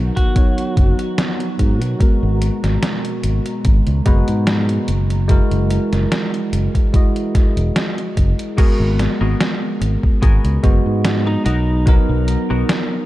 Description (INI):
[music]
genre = vaporwave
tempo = 73 BPM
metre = 4/4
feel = swing 54% on 16ths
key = G# minor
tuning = A4 = 438 Hz
[part]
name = bell-like tine electric piano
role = accompaniment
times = 0.0-13.1 s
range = F#3 to D#5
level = -22 LUFS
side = equal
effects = wide subtle chorus, tape echo
[part]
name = warbly tape-like pad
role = sustained chords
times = 0.0-8.6 s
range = B2 to A#5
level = -29 LUFS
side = right 1 dB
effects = chorus, built-in reverb, vintage 12-bit sampler grit
[part]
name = fingered electric bass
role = bass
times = 0.0-12.6 s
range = E1 to B2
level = -18 LUFS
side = equal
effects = none
[part]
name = lightly driven lead guitar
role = melody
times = 0.2-1.0, 11.3-12.0 s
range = D#4 to F#4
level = -28 LUFS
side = equal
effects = tape echo
[part]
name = detuned 8-bit digital drum machine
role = drums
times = 0.2-12.9 s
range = crash cymbal, hi-hat, snare drum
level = -23 LUFS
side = equal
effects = none
[part]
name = electronic kick drum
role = drums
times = 0.2-12.0 s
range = none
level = -14 LUFS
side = equal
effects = none
[part]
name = semi-hollow electric guitar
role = riff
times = 8.6-12.8 s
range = B3 to A#4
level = -28 LUFS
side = left 1 dB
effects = wide subtle chorus, tape echo
[sound]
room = digital ambience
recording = dark, warm production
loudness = -14 LUFS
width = side -16 dB against mid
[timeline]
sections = 0.0-8.6 A section; 8.6-13.1 B section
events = none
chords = 0.0 Bmaj7; 2.0 G#m9; 4.9 F#9; 8.6 G#m9; 11.5 Bmaj7